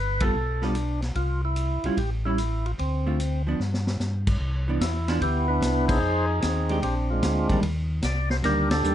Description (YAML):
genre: soul jazz organ trio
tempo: 148 BPM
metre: 4/4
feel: swing 67% on 8ths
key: C major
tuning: A4 = 441 Hz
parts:
  - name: percussive tonewheel organ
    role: melody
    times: 0.0-8.9 s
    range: Ab3 to D5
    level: -27 LUFS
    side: equal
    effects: slow rotary speaker
  - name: mellow tonewheel organ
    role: bass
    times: 0.0-8.9 s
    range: G1 to G2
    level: -26 LUFS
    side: equal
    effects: slow rotary speaker
  - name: vintage hollow-body jazz guitar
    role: accompaniment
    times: 0.2-8.9 s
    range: D3 to A4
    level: -28 LUFS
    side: right 2 dB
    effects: none
  - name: vintage drum kit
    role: drums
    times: 0.2-8.9 s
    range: crash cymbal, hi-hat, kick drum, ride cymbal, snare drum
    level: -30 LUFS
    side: equal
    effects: none
room: light reverb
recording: nothing above 10.7 kHz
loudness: -23 LUFS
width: side -11 dB against mid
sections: 0.0-4.4 A section; 4.4-8.9 B section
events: band accent 0.2, 5.8, 8.6; drum fill 3.6-4.0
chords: 0.0 G9; 1.2 C; 2.0 A7; 2.8 Dm7; 3.6 N.C.; 4.4 Cmaj9; 6.0 Fm9; 6.8 Bb13; 7.6 Ebmaj7